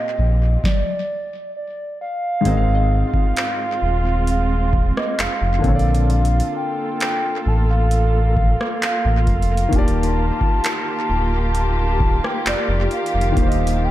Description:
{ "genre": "contemporary R&B", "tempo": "66 BPM", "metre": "4/4", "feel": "straight", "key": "Bb major", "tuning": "A4 = 441 Hz", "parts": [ { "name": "hollow clarinet-like synth lead", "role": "melody", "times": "0.0-13.9 s", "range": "D5 to A5", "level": "-24 LUFS", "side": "right 1 dB", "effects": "chorus, tape echo" }, { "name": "warm baby grand piano", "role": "accompaniment", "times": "0.0-13.9 s", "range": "Ab2 to F5", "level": "-25 LUFS", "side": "left 4 dB", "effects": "tape echo" }, { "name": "muted studio string section", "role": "sustained chords", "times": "0.0-13.9 s", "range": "Eb3 to A4", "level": "-26 LUFS", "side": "right 1 dB", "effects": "none" }, { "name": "glassy wavetable pluck", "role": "texture", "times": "0.0-5.7 s", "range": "Bb4 to G5", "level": "-40 LUFS", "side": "right 2 dB", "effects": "none" }, { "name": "sub bass with octave", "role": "bass", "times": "0.2-13.9 s", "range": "D1 to Bb1", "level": "-18 LUFS", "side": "equal", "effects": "none" }, { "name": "booming analog drum machine", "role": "drums", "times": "0.6-13.8 s", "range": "handclaps, hi-hat, kick drum, rim click, snare drum", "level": "-21 LUFS", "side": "equal", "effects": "overdrive" } ], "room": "little or no reverb", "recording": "echo-heavy mix", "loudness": "-16 LUFS", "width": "side -14 dB against mid", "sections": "0.0-2.5 A section; 2.5-13.9 A section", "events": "stop 0.6-2.5", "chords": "0.0 Bb69; 2.5 Ab69; 5.6 Bbmaj7; 9.7 Ebmaj7" }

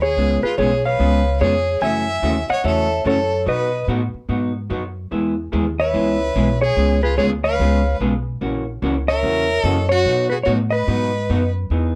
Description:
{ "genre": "country, western swing", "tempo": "146 BPM", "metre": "4/4", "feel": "swing 64% on 8ths", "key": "unclear", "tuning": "A4 = 438 Hz", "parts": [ { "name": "clean lap steel guitar", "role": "melody", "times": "0.0-11.5 s", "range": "F#4 to G#5", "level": "-22 LUFS", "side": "equal", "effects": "none" }, { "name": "clear fiddle", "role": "second line", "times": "0.0-11.5 s", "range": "E#4 to E5", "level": "-27 LUFS", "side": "equal", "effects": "none" }, { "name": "upright bass", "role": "bass", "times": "0.0-12.0 s", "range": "A#1 to B2", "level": "-24 LUFS", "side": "equal", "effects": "none" }, { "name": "vintage hollow-body jazz guitar", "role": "accompaniment", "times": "0.2-11.9 s", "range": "B2 to G#4", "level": "-25 LUFS", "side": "equal", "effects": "none" } ], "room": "moderate club reverb, RT60 0.5 s", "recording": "none", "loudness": "-19 LUFS", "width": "mono", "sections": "0.0-11.7 A section", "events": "none", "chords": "0.2 C#7; 1.8 F#m7; 3.5 B; 5.1 E; 6.8 C#7; 8.4 F#7; 10.1 B" }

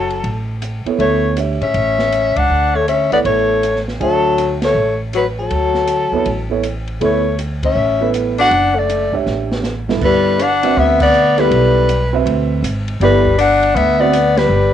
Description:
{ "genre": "modal jazz", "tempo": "160 BPM", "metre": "4/4", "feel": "swing 64% on 8ths", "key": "D major, G major from 10.0 s", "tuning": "A4 = 440 Hz", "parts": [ { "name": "mellow soprano saxophone", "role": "melody", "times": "0.0-14.7 s", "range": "A4 to F#5", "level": "-16 LUFS", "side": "right 1 dB", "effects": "cassette tape, plate reverb" }, { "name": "growling tenor saxophone", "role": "second line", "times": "0.0-14.7 s", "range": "F#3 to D4", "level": "-17 LUFS", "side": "left 7 dB", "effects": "cassette tape, plate reverb" }, { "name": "upright bass", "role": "bass", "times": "0.0-14.7 s", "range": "F#1 to A2", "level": "-20 LUFS", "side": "right 1 dB", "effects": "none" }, { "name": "open jazz drum kit", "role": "drums", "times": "0.1-14.4 s", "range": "crash cymbal, hi-hat, kick drum, ride cymbal, snare drum", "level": "-27 LUFS", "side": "right 1 dB", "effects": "cassette tape" }, { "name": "dark baby grand piano", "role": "accompaniment", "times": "0.9-14.1 s", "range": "G2 to G5", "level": "-20 LUFS", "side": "right 9 dB", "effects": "cassette tape, plate reverb" } ], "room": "moderate studio reverb, RT60 0.5 s", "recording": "home recording on cassette", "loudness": "-13 LUFS", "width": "side -10 dB against mid", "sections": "0.0-10.0 A section; 10.0-14.7 B section", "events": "band accent 2.3, 4.6, 7.6, 11.0, 14.3; drum fill 9.3-10.0", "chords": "0.0 Dmaj9; 10.0 Gmaj9" }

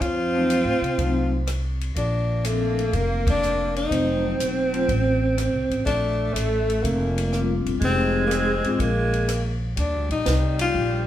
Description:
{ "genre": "jazz, small-group swing and bop", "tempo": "123 BPM", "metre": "4/4", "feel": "swing 69% on 8ths", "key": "Bb major", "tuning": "A4 = 438 Hz", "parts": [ { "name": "clear tenor saxophone", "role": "melody", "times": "0.0-11.1 s", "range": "A3 to F4", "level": "-25 LUFS", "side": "left 2 dB", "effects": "none" }, { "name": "warm alto saxophone", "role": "second line", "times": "0.0-11.1 s", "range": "G3 to C4", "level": "-26 LUFS", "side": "right 3 dB", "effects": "none" }, { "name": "upright bass", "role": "bass", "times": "0.0-11.1 s", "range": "E1 to C3", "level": "-25 LUFS", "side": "equal", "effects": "none" }, { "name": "compact cocktail drum kit", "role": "drums", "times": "0.0-10.9 s", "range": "hi-hat, kick drum, ride cymbal, rim click, snare drum", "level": "-31 LUFS", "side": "equal", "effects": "none" }, { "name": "vibraphone with medium hard mallets", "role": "accompaniment", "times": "0.3-10.7 s", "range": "F3 to G4", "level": "-28 LUFS", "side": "left 5 dB", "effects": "none" } ], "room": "wet large studio reverb, RT60 0.9 s", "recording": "heard from further back in the room", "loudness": "-20 LUFS", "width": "side -12 dB against mid", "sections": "0.0-9.8 A section; 9.8-11.1 B section", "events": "band accent 3.2", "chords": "0.0 F7b9; 2.0 Bbmaj9; 3.9 F7b9; 5.9 Bb6; 7.8 Fm7; 8.8 Absus2/Bb; 9.8 Ebmaj9" }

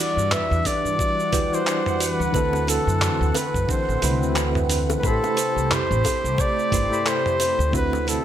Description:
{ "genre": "sunset chillout", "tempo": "89 BPM", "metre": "4/4", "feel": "swing 58% on 16ths", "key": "unclear", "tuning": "A4 = 439 Hz", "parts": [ { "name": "trumpet with bucket mute", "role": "melody", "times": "0.0-8.2 s", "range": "A4 to E5", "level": "-24 LUFS", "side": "left 1 dB", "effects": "digital delay" }, { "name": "soft electric-piano-like synth keys", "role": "accompaniment", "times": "0.0-8.2 s", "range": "D3 to B5", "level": "-27 LUFS", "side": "equal", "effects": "chorus, tremolo, auto-pan" }, { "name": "lush unison pad", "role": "sustained chords", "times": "0.0-8.2 s", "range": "C3 to F#5", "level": "-30 LUFS", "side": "right 2 dB", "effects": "chorus, phaser" }, { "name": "buzzing kalimba", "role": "arpeggios", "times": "0.0-8.2 s", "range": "D4 to C5", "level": "-30 LUFS", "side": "right 2 dB", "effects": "digital delay" }, { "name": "upright bass", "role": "bass", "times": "0.2-8.2 s", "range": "G1 to G2", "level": "-25 LUFS", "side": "equal", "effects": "none" }, { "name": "dusty soul sampler-style drum kit", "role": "drums", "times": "0.2-8.2 s", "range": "handclaps, hi-hat, shaker, toms", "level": "-27 LUFS", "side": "right 1 dB", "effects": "none" }, { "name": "electronic kick drum", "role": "drums", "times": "0.7-7.9 s", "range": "none", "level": "-26 LUFS", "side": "equal", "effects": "none" }, { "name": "bongos", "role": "percussion", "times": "0.7-8.0 s", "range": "none", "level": "-33 LUFS", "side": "left 6 dB", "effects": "none" } ], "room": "moderate digital room reverb, RT60 1.1 s", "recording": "none", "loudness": "-19 LUFS", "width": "side -10 dB against mid", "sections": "0.0-8.2 A section", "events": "none", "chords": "0.0 Em9; 2.3 D13; 5.0 Am9; 7.7 D13" }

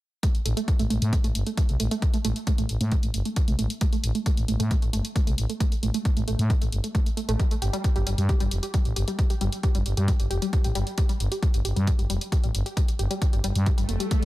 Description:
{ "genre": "driving peak-time techno", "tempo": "134 BPM", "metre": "4/4", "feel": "straight", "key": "unclear", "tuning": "A4 = 439 Hz", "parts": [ { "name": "tight sequenced synth", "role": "riff", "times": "0.2-14.2 s", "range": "G3 to G4", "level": "-31 LUFS", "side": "right 1 dB", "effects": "chorus, sidechain pumping, analog delay" }, { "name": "electronic hi-hat", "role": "drums", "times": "0.2-14.2 s", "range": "none", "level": "-35 LUFS", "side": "left 1 dB", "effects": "sidechain pumping on hats" }, { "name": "electronic kick drum", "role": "drums", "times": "0.2-14.2 s", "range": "none", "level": "-23 LUFS", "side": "equal", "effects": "none" }, { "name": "growling FM bass", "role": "bass", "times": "0.5-14.2 s", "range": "F1 to A2", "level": "-25 LUFS", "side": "equal", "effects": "sidechain pumping" }, { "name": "swell", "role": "sound effects", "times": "13.8-14.2 s", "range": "none", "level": "-33 LUFS", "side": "right 6 dB", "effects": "none" } ], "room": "light reverb", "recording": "echo-heavy mix", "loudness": "-22 LUFS", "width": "side -17 dB against mid", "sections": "0.2-14.2 A section", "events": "filter sweep on synth arpeggio sound 0.2-14.2; swell 13.8-14.2", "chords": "none" }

